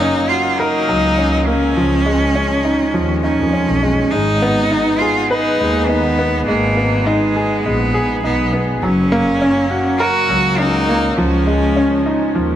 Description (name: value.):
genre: piano and strings electronica.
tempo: 102 BPM.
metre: 4/4.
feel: straight.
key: G# dorian.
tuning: A4 = 439 Hz.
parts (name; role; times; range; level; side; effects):
clear cello; melody; 0.0-12.4 s; G#3 to F#4; -17 LUFS; equal; ping-pong delay.
clear upright piano; riff; 0.0-12.6 s; E#3 to B4; -17 LUFS; equal; ping-pong delay.
muted symphonic double bass section; bass; 0.0-12.6 s; F#1 to E#2; -21 LUFS; equal; none.
room: light reverb, small room ambience.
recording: none.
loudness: -13 LUFS.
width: side -11 dB against mid.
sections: 0.0-12.6 A section.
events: none.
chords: 0.0 F#; 1.8 C#add9; 4.1 G#m; 8.8 F#; 11.2 C#add9.